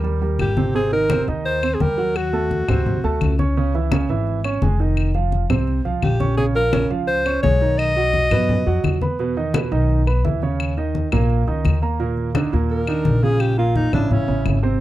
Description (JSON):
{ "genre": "Afro-Cuban jazz", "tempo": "171 BPM", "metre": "4/4", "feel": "straight", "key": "unclear", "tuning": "A4 = 440 Hz", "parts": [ { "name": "warm grand piano", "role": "accompaniment", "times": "0.0-14.8 s", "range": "Bb2 to Db6", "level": "-23 LUFS", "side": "right 5 dB", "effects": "none" }, { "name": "upright bass", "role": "bass", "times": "0.0-14.8 s", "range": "F1 to F#2", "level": "-21 LUFS", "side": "left 1 dB", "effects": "none" }, { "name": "congas", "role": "percussion", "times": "0.0-14.6 s", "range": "none", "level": "-24 LUFS", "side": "left 2 dB", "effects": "none" }, { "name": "clear alto saxophone", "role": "melody", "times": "0.4-3.4, 6.0-9.0, 12.7-14.5 s", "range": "C#4 to D#5", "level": "-21 LUFS", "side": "left 1 dB", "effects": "none" }, { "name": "claves", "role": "percussion", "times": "0.4-14.6 s", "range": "none", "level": "-32 LUFS", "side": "left 8 dB", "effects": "none" } ], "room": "little or no reverb", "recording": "dry, close 1970s-style studio recording", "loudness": "-17 LUFS", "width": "side -15 dB against mid", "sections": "0.8-12.0 A section; 12.0-14.8 B section", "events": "alto saxophone solo 12.0-14.8", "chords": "0.0 Eb6; 0.8 Abmaj9; 2.2 Ebdim; 2.9 D7; 3.6 Dbmadd9; 5.0 F5; 6.4 Bbm9; 7.8 B; 9.2 E5; 10.6 Eb5; 12.0 Ebsus2; 13.4 Bbm; 14.1 A" }